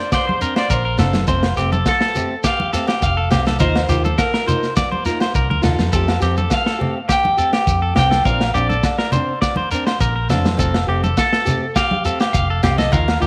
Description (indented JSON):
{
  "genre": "highlife guitar band",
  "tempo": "103 BPM",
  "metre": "4/4",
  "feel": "straight",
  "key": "F mixolydian",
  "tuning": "A4 = 440 Hz",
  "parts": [
    { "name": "electric guitar at the edge of break-up", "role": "melody", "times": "0.0-13.3 s", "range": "A4 to G5", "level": "-24 LUFS", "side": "equal", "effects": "none" },
    { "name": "clean electric guitar", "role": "arpeggios", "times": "0.0-13.3 s", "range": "G4 to D5", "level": "-25 LUFS", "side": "equal", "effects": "tape echo" },
    { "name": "crunchy breakbeat drum kit", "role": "drums", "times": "0.1-13.2 s", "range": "kick drum, snare drum", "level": "-24 LUFS", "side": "equal", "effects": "none" },
    { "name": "agogo bells", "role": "percussion", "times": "0.1-13.2 s", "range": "none", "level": "-31 LUFS", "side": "equal", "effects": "none" },
    { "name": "shekere", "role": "percussion", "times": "0.1-13.3 s", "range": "none", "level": "-30 LUFS", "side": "equal", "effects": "none" },
    { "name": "congas", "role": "percussion", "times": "0.3-13.1 s", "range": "none", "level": "-26 LUFS", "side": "equal", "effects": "none" },
    { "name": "picked acoustic archtop guitar", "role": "accompaniment", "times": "0.4-13.3 s", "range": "Eb3 to G4", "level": "-29 LUFS", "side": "equal", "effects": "none" },
    { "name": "vintage muted fingered electric bass", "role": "bass", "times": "0.7-13.3 s", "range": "F1 to F2", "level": "-22 LUFS", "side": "equal", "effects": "none" }
  ],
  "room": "light reverb, small room ambience",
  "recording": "none",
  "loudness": "-18 LUFS",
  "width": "mono",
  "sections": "0.0-13.3 A section",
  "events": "none",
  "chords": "0.0 Bbadd9; 1.3 Fadd9; 3.6 Ebsus2; 5.9 Fadd9; 8.3 Bbadd9; 10.6 Fadd9",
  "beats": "0.13 0.71 | 1.29 1.87 2.45 3.03 | 3.61 4.19 4.77 5.35 | 5.93 6.51 7.09 7.67 | 8.26 8.84 9.42 10.01 | 10.59 11.17 11.76 12.34 | 12.93"
}